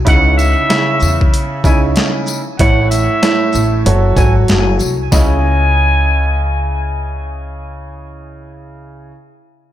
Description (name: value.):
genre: hip hop, boom-bap hip-hop.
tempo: 95 BPM.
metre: 4/4.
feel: swing 60% on 16ths.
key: C# minor.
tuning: A4 = 440 Hz.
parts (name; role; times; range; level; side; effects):
warm upright piano; accompaniment; 0.0-9.1 s; A2 to D#5; -18 LUFS; right 3 dB; cassette tape, high-pass filter, low-pass filter.
upright bass; bass; 0.0-9.1 s; F#1 to E2; -15 LUFS; equal; none.
trumpet with straight mute; melody; 0.1-7.0 s; E5 to G#5; -18 LUFS; left 1 dB; high-pass filter, low-pass filter, ping-pong delay.
boom bap sampler-style drum kit; drums; 0.1-5.3 s; hi-hat, kick drum, shaker, snare drum; -15 LUFS; left 1 dB; none.
tambourine; percussion; 0.4-5.4 s; none; -27 LUFS; left 6 dB; none.
room: moderate plate reverb, RT60 2.2 s.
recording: dreamy mix soaked in reverb.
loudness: -11 LUFS.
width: side -12 dB against mid.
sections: 0.0-5.1 A section; 5.1-7.6 B section.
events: none.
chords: 0.1 C#madd9; 2.6 A; 3.9 F#m; 5.1 C#madd9.